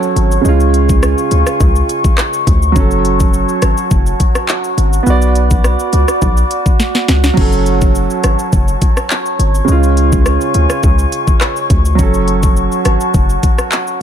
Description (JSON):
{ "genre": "dancehall", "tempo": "104 BPM", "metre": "4/4", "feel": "straight", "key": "F# harmonic minor", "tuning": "A4 = 437 Hz", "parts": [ { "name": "warm concert grand piano", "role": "accompaniment", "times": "0.0-14.0 s", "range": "C#3 to D5", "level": "-18 LUFS", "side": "right 6 dB", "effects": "none" }, { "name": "mellow large flute ensemble", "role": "sustained chords", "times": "0.0-14.0 s", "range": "E#4 to D6", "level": "-18 LUFS", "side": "left 1 dB", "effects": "sidechain pumping" }, { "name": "island pop drum kit", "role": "drums", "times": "0.0-14.0 s", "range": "crash cymbal, handclaps, hi-hat, kick drum, rim click, shaker, snare drum", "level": "-14 LUFS", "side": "left 1 dB", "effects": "overdrive" }, { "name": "hard-hitting 808-style bass", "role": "bass", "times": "0.2-13.4 s", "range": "F#1 to D2", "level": "-13 LUFS", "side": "left 1 dB", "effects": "none" } ], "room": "digital ambience", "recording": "none", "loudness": "-10 LUFS", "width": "side -9 dB against mid", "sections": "0.0-14.0 A section", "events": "drum fill 6.8-7.4", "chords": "0.5 C#; 2.8 F#m; 5.1 Bm; 7.4 F#m; 9.7 C#; 12.0 F#m" }